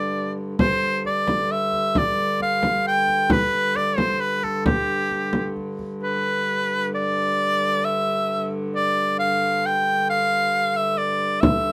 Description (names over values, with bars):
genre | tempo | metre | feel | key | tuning
medieval dance | 133 BPM | 3/4 | straight | G mixolydian | A4 = 440 Hz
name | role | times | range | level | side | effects
bright shawm | melody | 0.0-11.7 s | G4 to G5 | -23 LUFS | equal | none
dark hurdy-gurdy | drone | 0.0-11.7 s | G2 to D3 | -31 LUFS | equal | none
frame drum | percussion | 0.6-5.9, 11.4-11.7 s | none | -24 LUFS | equal | none
room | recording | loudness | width
light reverb | none | -22 LUFS | mono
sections
0.0-6.0 A section; 6.0-11.7 A section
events
none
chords
none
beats
0.14 | 0.59 1.04 1.50 | 1.95 2.40 2.85 | 3.30 3.75 4.21 | 4.66 5.11 5.56 | 6.01 6.46 6.92 | 7.37 7.82 8.27 | 8.72 9.17 9.62 | 10.07 10.52 10.97 | 11.43